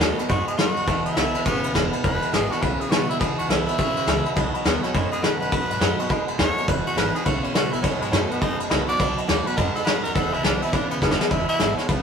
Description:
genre	rockabilly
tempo	207 BPM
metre	4/4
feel	swing 62% on 8ths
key	E major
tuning	A4 = 437 Hz
part	raspy tenor saxophone	melody	0.0-12.0 s	D#3 to D5	-27 LUFS	equal	none
part	honky-tonk upright piano	accompaniment	0.0-12.0 s	D#5 to C#6	-32 LUFS	left 4 dB	none
part	picked steel-string acoustic guitar	accompaniment	0.0-12.0 s	E2 to F#4	-31 LUFS	left 2 dB	none
part	twangy electric guitar	riff	0.0-12.0 s	E2 to G#3	-29 LUFS	right 4 dB	none
part	upright bass	bass	0.0-12.0 s	E1 to B2	-30 LUFS	right 1 dB	none
part	soft brush drum kit	drums	0.0-12.0 s	kick drum, ride cymbal, snare drum	-22 LUFS	equal	none
room	moderate stone room reverb, RT60 1.3 s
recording	rough rehearsal-room recording, faint mains hum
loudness	-20 LUFS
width	side -6 dB against mid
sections	0.0-2.0 A section; 2.0-11.3 A section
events	tenor saxophone solo 0.0-11.3; drum fill 11.0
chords	0.0 B7; 0.9 E; 4.4 B7; 6.7 E; 7.8 B7; 10.2 E

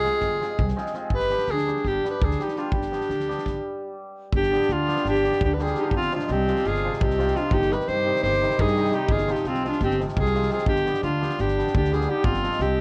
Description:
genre	balkan folk, Balkan wedding band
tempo	340 BPM (eighths)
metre	9/8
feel	straight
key	G phrygian dominant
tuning	A4 = 441 Hz
part	bright alto saxophone	melody	0.0-12.8 s	F4 to C5	-27 LUFS	equal	none
part	warm clarinet	second line	0.0-12.8 s	C4 to G4	-33 LUFS	equal	none
part	hammered dulcimer	accompaniment	0.0-12.8 s	C3 to Ab4	-32 LUFS	equal	none
part	upright bass	bass	0.0-12.8 s	G1 to G2	-31 LUFS	equal	none
part	loose indie drum kit	percussion	0.0-12.7 s	kick drum, snare drum	-31 LUFS	equal	none
room	moderate studio reverb, RT60 0.5 s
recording	worn, warbling old tape, cassette tape, warbly pitch drift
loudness	-24 LUFS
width	mono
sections	0.0-4.3 A section; 4.3-12.8 B section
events	speeding up 0.0-12.8; stop 3.5-4.3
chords	0.0 Fm/G; 1.1 G; 5.9 Fm/G; 7.5 Cm/G; 9.1 Fm/G; 10.7 G; 12.2 Fm/G

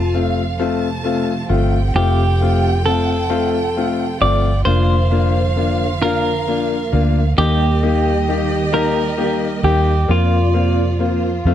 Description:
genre	six-eight pop ballad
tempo	44 BPM (dotted quarters)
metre	6/8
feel	straight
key	unclear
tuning	A4 = 439 Hz
part	clean electric guitar	melody	0.0-11.5 s	F4 to D5	-20 LUFS	right 1 dB	phaser
part	rich studio violin section	second line	0.0-11.5 s	C5 to A5	-28 LUFS	right 4 dB	none
part	warm studio string section	sustained chords	0.0-11.5 s	C3 to G4	-26 LUFS	right 4 dB	none
part	vintage muted fingered electric bass	bass	0.0-11.5 s	F1 to F2	-18 LUFS	right 1 dB	none
part	warm concert grand piano	accompaniment	0.1-11.5 s	A3 to G4	-20 LUFS	left 7 dB	none
room	light reverb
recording	dry, close 1970s-style studio recording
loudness	-14 LUFS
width	side -10 dB against mid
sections	0.0-11.5 A section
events	none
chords	0.0 F; 4.7 Bb/F; 7.4 Eb; 10.1 Fsus4

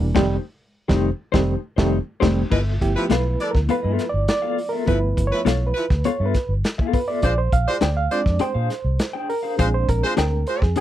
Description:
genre	funk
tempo	102 BPM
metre	4/4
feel	straight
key	G mixolydian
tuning	A4 = 440 Hz
part	bright reed electric piano	stabs	0.0-10.8 s	Eb3 to F5	-24 LUFS	right 3 dB	fast tremolo
part	vintage muted fingered electric bass	bass	0.0-10.8 s	E1 to Bb2	-22 LUFS	equal	none
part	mellow electric guitar	accompaniment	0.1-10.8 s	A3 to G5	-24 LUFS	left 8 dB	tremolo
part	crunchy breakbeat drum kit	drums	0.2-10.8 s	crash cymbal, hi-hat, kick drum, snare drum	-23 LUFS	equal	none
part	warm horn section	second line	2.5-10.6 s	F3 to D5	-24 LUFS	right 1 dB	none
room	little or no reverb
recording	dry, close 1970s-style studio recording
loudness	-19 LUFS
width	side -12 dB against mid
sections	0.0-2.5 A section; 2.5-10.8 B section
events	band accent 0.2-2.5; reed electric piano solo 2.5-10.8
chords	0.2 F9; 2.5 G13; 7.2 Bb9

